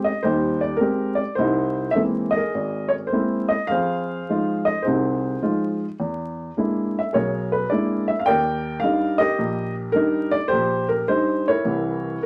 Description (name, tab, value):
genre	solo jazz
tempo	105 BPM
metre	4/4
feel	swing 69% on 8ths, rubato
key	Eb major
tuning	A4 = 440 Hz
part	warm upright piano	solo	0.0-12.3 s	G#1 to G5	-22 LUFS	equal	none
room	moderate small room reverb, RT60 0.5 s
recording	vinyl crackle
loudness	-22 LUFS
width	mono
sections	0.0-12.3 A section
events	none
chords	0.0 Abmaj7; 1.4 C7alt; 3.7 Fm7; 6.0 E7#11; 8.3 Ebmaj7; 11.7 C7b9